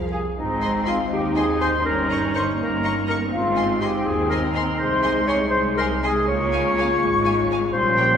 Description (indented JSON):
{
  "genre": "cinematic, playful, whimsical film cue",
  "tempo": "82 BPM (dotted quarters)",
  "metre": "6/8",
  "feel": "straight",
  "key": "Ab major",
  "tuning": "A4 = 440 Hz",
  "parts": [
    { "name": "rich studio violin section", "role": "second line", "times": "0.0-8.1 s", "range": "Db5 to Bb5", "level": "-34 LUFS", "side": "left 3 dB", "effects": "none" },
    { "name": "mellow French horn section", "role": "sustained chords", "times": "0.0-8.2 s", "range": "G3 to Ab4", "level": "-26 LUFS", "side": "left 2 dB", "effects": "none" },
    { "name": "rich studio cello section", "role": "bass", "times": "0.0-8.2 s", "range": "Eb2 to Db3", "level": "-29 LUFS", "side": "right 2 dB", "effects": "none" },
    { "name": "rich studio double bass section", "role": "bass", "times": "0.0-8.2 s", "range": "G1 to Eb2", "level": "-29 LUFS", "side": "right 1 dB", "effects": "none" },
    { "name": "rich studio violin section", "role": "melody", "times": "0.1-8.1 s", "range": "Ab4 to Db6", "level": "-33 LUFS", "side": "left 3 dB", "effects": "none" },
    { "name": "flute section", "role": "second line", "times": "0.1-8.2 s", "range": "Eb5 to Db6", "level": "-28 LUFS", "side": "left 2 dB", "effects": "none" },
    { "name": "warm clarinet", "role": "second line", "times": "0.1-8.2 s", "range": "Eb4 to Db5", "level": "-23 LUFS", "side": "equal", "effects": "none" },
    { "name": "warm studio viola section", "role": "accompaniment", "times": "0.4-8.2 s", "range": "G3 to Eb4", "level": "-29 LUFS", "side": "right 1 dB", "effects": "none" }
  ],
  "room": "wet concert hall reverb, RT60 2.3 s",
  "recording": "recorded in a church or concert hall",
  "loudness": "-19 LUFS",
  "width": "side -8 dB against mid",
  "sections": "0.4-8.2 A section",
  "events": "none",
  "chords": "0.4 Ab; 1.9 Eb7/G; 3.3 Ab; 4.8 Ab/C; 6.3 Db"
}